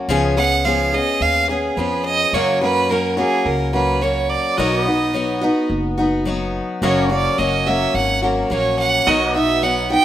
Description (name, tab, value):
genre	honky-tonk and classic country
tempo	107 BPM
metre	4/4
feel	straight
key	B major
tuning	A4 = 438 Hz
part	picked steel-string acoustic guitar	accompaniment	0.0-10.0 s	F#2 to G#4	-19 LUFS	left 2 dB	none
part	upright bass	bass	0.1-10.0 s	F#1 to F#2	-25 LUFS	equal	none
part	clear fiddle	second line	0.4-10.0 s	G#4 to G5	-18 LUFS	right 4 dB	none
part	pedal steel guitar	sustained chords	4.6-10.0 s	F#4 to D#5	-28 LUFS	right 1 dB	lush chorus
room	light reverb, studio reverb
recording	rough home demo mix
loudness	-16 LUFS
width	side -11 dB against mid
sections	0.0-10.0 A section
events	fiddle solo 0.0-10.0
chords	0.1 C#7; 2.3 F#; 4.6 B; 6.8 F#; 9.1 B